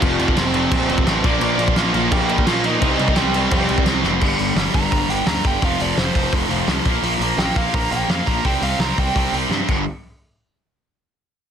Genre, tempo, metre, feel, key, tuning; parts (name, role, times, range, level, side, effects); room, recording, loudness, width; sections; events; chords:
punk rock; 170 BPM; 4/4; straight; G minor; A4 = 440 Hz
biting overdriven guitar; melody; 0.0-9.3 s; F3 to Bb5; -24 LUFS; right 3 dB
crunchy overdriven guitar; riff; 0.0-9.8 s; F2 to C4; -24 LUFS; left 14 dB
distorted electric guitar; riff; 0.0-9.8 s; F2 to C4; -23 LUFS; right 15 dB; overdrive
distorted electric guitar; riff; 0.0-6.9 s; F2 to C4; -27 LUFS; equal
fuzz picked electric bass; bass; 0.0-9.9 s; F1 to Bb2; -24 LUFS; equal; overdrive
loose indie drum kit; drums; 0.0-9.8 s; crash cymbal, hi-hat, kick drum, snare drum; -21 LUFS; equal
little or no reverb; dense, heavily limited modern master; -16 LUFS; side -8 dB against mid
0.0-4.2 A section; 4.2-9.9 B section; 9.9-11.3 C section
drum fill 4.0, 9.5-9.9; overdriven electric guitar solo 4.2-9.9
0.0 F; 1.2 Bb; 2.8 Cm; 4.2 Gm; 5.6 F5; 6.9 Bb5; 8.4 C5; 9.7 G5; 9.9 N.C.